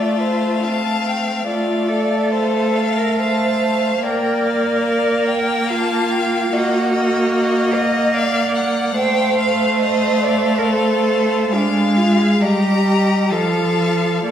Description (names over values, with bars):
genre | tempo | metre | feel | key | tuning
classical, slow romantic movement for string quartet | 61-76 BPM | 3/4 | rubato | unclear | A4 = 438 Hz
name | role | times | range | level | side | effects
clear violin | melody | 0.0-14.3 s | F5 to Bb5 | -27 LUFS | left 7 dB | none
clear violin | second line | 0.0-14.3 s | C5 to G5 | -23 LUFS | left 4 dB | none
clear viola | accompaniment | 0.0-14.3 s | F3 to Bb3 | -19 LUFS | equal | none
rich cello | bass | 0.0-14.3 s | C4 to Eb5 | -20 LUFS | right 3 dB | none
room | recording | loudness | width
wet recital hall reverb, RT60 1.6 s | heard from further back in the room | -15 LUFS | side -9 dB against mid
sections
0.0-14.3 A section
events
none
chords
0.0 F/A; 4.0 Bb; 6.5 Ebm/Bb; 9.0 F/A; 11.5 Ddim/Ab; 12.4 Eb/G; 13.3 F